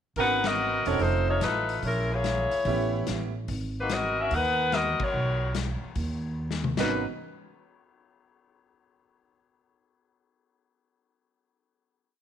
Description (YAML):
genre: jazz, big band swing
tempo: 145 BPM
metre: 4/4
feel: swing 67% on 8ths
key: G# minor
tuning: A4 = 444 Hz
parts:
  - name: mellow saxophone section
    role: melody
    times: 0.2-7.0 s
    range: F#3 to F#5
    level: -26 LUFS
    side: left 2 dB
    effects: none
  - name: clear baby grand piano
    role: accompaniment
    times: 0.2-3.3, 6.8-7.0 s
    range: B3 to A#4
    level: -31 LUFS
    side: right 13 dB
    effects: none
  - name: upright bass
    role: bass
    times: 0.2-7.0 s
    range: E1 to D#2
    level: -30 LUFS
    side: right 1 dB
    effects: none
  - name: vintage drum kit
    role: drums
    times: 0.2-6.9 s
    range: crash cymbal, hi-hat, kick drum, ride cymbal, snare drum, toms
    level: -35 LUFS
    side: left 5 dB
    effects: none
room: light reverb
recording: 1960s-style stereo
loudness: -25 LUFS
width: side -9 dB against mid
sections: 0.2-6.8 A section; 6.8-8.4 final chord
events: band accent 0.4, 4.9; drum fill 6.4-6.8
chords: 0.2 G#m11; 1.0 F7b13; 1.8 A#m7b5; 2.7 A9; 3.5 G#m11